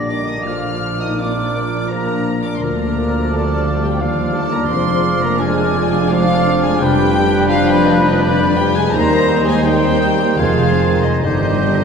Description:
classical, slow romantic movement for symphony orchestra; 71-88 BPM; 3/4; rubato; A4 = 440 Hz
warm studio violin section; melody; 0.0-11.8 s; D5 to F6; -24 LUFS; left 4 dB
bright silver concert flute; second line; 0.0-11.8 s; F6 to Bb6; -27 LUFS; left 2 dB
dark studio violin section; second line; 0.0-11.8 s; D4 to F5; -25 LUFS; left 2 dB
mellow clarinet; second line; 0.0-11.8 s; D4 to G4; -28 LUFS; left 2 dB
warm oboe; second line; 0.0-11.8 s; B4 to D5; -25 LUFS; right 3 dB
dark chamber viola section; accompaniment; 0.0-11.8 s; D3 to Eb4; -24 LUFS; equal
mellow bassoon; accompaniment; 0.0-11.8 s; D3 to F3; -26 LUFS; right 2 dB
mellow French horn section; sustained chords; 0.0-11.8 s; D3 to F4; -24 LUFS; left 2 dB
warm trombone section; sustained chords; 0.0-11.8 s; D3 to D4; -25 LUFS; right 2 dB
concert harp; arpeggios; 0.0-11.8 s; F2 to D6; -25 LUFS; left 4 dB
mellow trumpet; stabs; 0.0-11.8 s; G4 to D5; -24 LUFS; equal
dark chamber cello section; bass; 0.0-11.8 s; D2 to Bb2; -25 LUFS; right 2 dB
mellow tuba; bass; 0.0-11.8 s; F1 to Eb2; -24 LUFS; right 2 dB
warm chamber double bass section; bass; 0.0-11.8 s; F1 to Eb2; -23 LUFS; right 2 dB
wet scoring stage reverb, RT60 2.0 s; heard from further back in the room; -13 LUFS; side -6 dB against mid
0.0-11.8 A section
0.5 Bb; 2.6 Bb/D; 4.7 Ddim/F; 6.8 G7/F; 8.9 Cm/Eb; 10.4 Fm7; 11.2 Gsus4
| 0.46 1.19 1.91 | 2.62 3.33 4.02 | 4.71 5.41 6.12 | 6.83 7.51 8.23 | 8.95 9.65 10.41 | 11.24

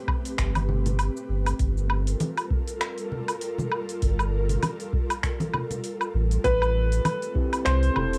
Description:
sunset chillout; 99 BPM; 4/4; swing 57% on 16ths; A4 = 443 Hz
ethereal airy pad; sustained chords; 0.0-8.2 s; G3 to B4; -36 LUFS; equal; ensemble chorus, built-in reverb, tremolo, cassette tape
electronic kick drum; drums; 0.1-7.5 s; -29 LUFS; equal; small room ambience, cassette tape
smooth R&B drum kit; drums; 0.1-8.2 s; finger snaps, hi-hat, shaker, woodblock; -32 LUFS; equal; small room ambience, cassette tape
warm sub bass; bass; 0.4-8.2 s; E1 to C2; -26 LUFS; equal
congas; percussion; 0.6-8.1 s; -32 LUFS; equal
dark baby grand piano; melody; 6.4-8.2 s; B4 to C5; -28 LUFS; equal; cassette tape
mellow tine electric piano; accompaniment; 7.3-8.2 s; C4 to B4; -31 LUFS; equal; cassette tape
light reverb; home recording on cassette; -26 LUFS; mono
0.0-8.2 A section
0.0 Am9; 1.3 Gm9; 6.4 Am9
0.39 0.99 | 1.60 2.20 2.81 3.42 | 4.02 4.63 5.23 5.84 | 6.45 7.05 7.66

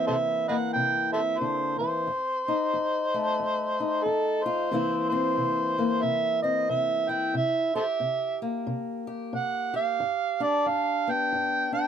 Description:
acoustic country blues, solo or duo; 91 BPM; 4/4; swing 61% on 8ths; C mixolydian; A4 = 437 Hz
overdriven harmonica; melody; 0.0-11.9 s; A4 to G5; -26 LUFS; right 2 dB
fingerpicked acoustic archtop guitar; accompaniment; 0.0-11.9 s; F2 to G4; -29 LUFS; left 2 dB
moderate booth ambience, RT60 0.2 s; -24 LUFS; side -8 dB against mid
0.0-11.9 A section
0.0 C7; 2.1 F7; 4.7 C7; 10.0 G7
0.08 0.74 1.41 | 2.07 2.73 3.39 4.05 | 4.71 5.38 6.04 6.70 | 7.36 8.02 8.68 9.34 | 10.01 10.67 11.33

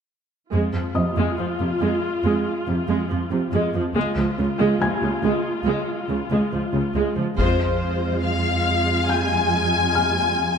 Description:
cinematic, hybrid orchestral and electronic film score; 70 BPM; 4/4; straight; F minor; A4 = 440 Hz
warm symphonic viola section; accompaniment; 0.5-10.6 s; C3 to F4; -24 LUFS; right 2 dB
warm symphonic cello section; bass; 0.5-10.6 s; Db2 to F2; -24 LUFS; right 2 dB
felt-muted upright piano; texture; 1.0-10.6 s; Eb5 to Ab6; -31 LUFS; left 3 dB; ping-pong delay
rich symphonic violin section; melody; 7.4-10.6 s; C5 to Ab5; -21 LUFS; left 6 dB
taiko ensemble; drums; 7.4-9.1 s; -25 LUFS; left 1 dB
moderate scoring stage reverb, RT60 2.0 s; -19 LUFS; side -6 dB against mid
0.5-7.4 A section; 7.4-10.6 B section
band accent 7.4-8.2
0.5 Fm; 4.0 Db; 7.4 Fm
| 0.53 1.38 2.24 3.10 | 3.96 4.81 5.67 6.53 | 7.38 8.24 9.10 9.96

